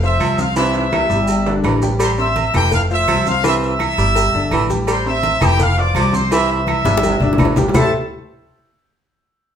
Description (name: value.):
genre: latin, salsa.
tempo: 167 BPM.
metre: 4/4.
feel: straight.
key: A minor.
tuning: A4 = 441 Hz.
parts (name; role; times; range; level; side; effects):
bright trumpet section; melody; 0.0-7.9 s; G4 to E6; -19 LUFS; right 1 dB; none.
bright concert grand piano; accompaniment; 0.0-7.9 s; C3 to C6; -22 LUFS; left 3 dB; none.
upright bass; bass; 0.0-7.9 s; F1 to C2; -20 LUFS; equal; none.
congas; percussion; 0.0-7.8 s; none; -22 LUFS; left 1 dB; none.
maracas; percussion; 0.0-7.8 s; none; -34 LUFS; right 2 dB; none.
bright baritone saxophone; second line; 0.2-7.9 s; A2 to G3; -23 LUFS; right 2 dB; none.
claves; percussion; 0.2-7.8 s; none; -31 LUFS; right 3 dB; none.
timbales and agogo bells; percussion; 0.2-7.8 s; none; -25 LUFS; right 6 dB; none.
cowbell and bongos; percussion; 2.0-7.8 s; none; -26 LUFS; left 6 dB; none.
room: wet large studio reverb, RT60 0.9 s.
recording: band playing live in one room.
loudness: -14 LUFS.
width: side -8 dB against mid.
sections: 0.0-7.7 A section; 7.7-9.2 B section.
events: drum fill 0.6-2.0, 6.7-7.7.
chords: 0.0 F5; 0.6 C; 1.3 G5; 2.0 Am7; 2.7 F; 3.4 C; 4.2 G5; 4.9 Am7; 5.6 F; 6.3 C; 7.0 G5; 7.7 Am7.